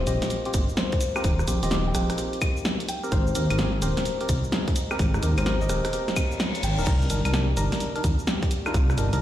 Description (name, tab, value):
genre	UK garage, two-step garage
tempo	128 BPM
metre	4/4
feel	swing 65% on 16ths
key	unclear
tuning	A4 = 441 Hz
part	concert harp	melody	0.0-9.2 s	F4 to G5	-33 LUFS	left 3 dB	ping-pong delay
part	dark detuned saw bass	bass	0.0-9.2 s	Eb1 to Eb2	-25 LUFS	equal	none
part	warbly tape-like pad	texture	0.4-9.2 s	Ab3 to Bb5	-41 LUFS	equal	none
part	percussive organ stab	stabs	0.1-9.2 s	C4 to Bb4	-32 LUFS	equal	chorus, ping-pong delay
part	punchy analog drum machine	drums	0.1-9.2 s	claves, crash cymbal, hi-hat, rim click, shaker, snare drum	-28 LUFS	equal	none
part	electronic kick drum	drums	0.5-8.9 s	none	-25 LUFS	equal	none
part	reverse cymbal	sound effects	6.1-6.9 s	none	-35 LUFS	left 4 dB	none
room	light reverb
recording	played on a big sound system in a bare room, stone room reverb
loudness	-22 LUFS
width	side -12 dB against mid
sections	0.0-9.2 A section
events	reverse cymbal 6.1-6.9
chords	0.0 Eb6; 2.9 Abmaj7; 6.9 Cm7